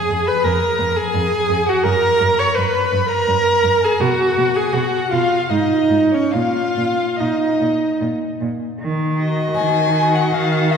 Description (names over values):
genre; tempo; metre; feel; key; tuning
classical, slow romantic movement for string quartet; 68-86 BPM; 3/4; rubato; Eb minor; A4 = 445 Hz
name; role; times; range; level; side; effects
dark violin; melody; 0.0-10.8 s; Db5 to Db6; -24 LUFS; left 5 dB; none
clear violin; second line; 0.0-10.8 s; Db5 to Db6; -24 LUFS; left 2 dB; none
rich viola; accompaniment; 0.0-10.8 s; Db4 to Db5; -18 LUFS; right 1 dB; none
rich cello; bass; 0.1-10.8 s; F2 to Eb3; -22 LUFS; right 1 dB; none
room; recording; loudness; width
wet concert hall reverb, RT60 2.3 s; heard from further back in the room; -15 LUFS; side -6 dB against mid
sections
0.0-8.8 A section; 8.8-10.8 B section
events
none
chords
0.0 Fmadd11; 1.9 Gbadd11; 4.0 Abm7/Cb; 5.5 N.C.; 6.3 Bbsus4; 8.0 N.C.; 8.8 Ebm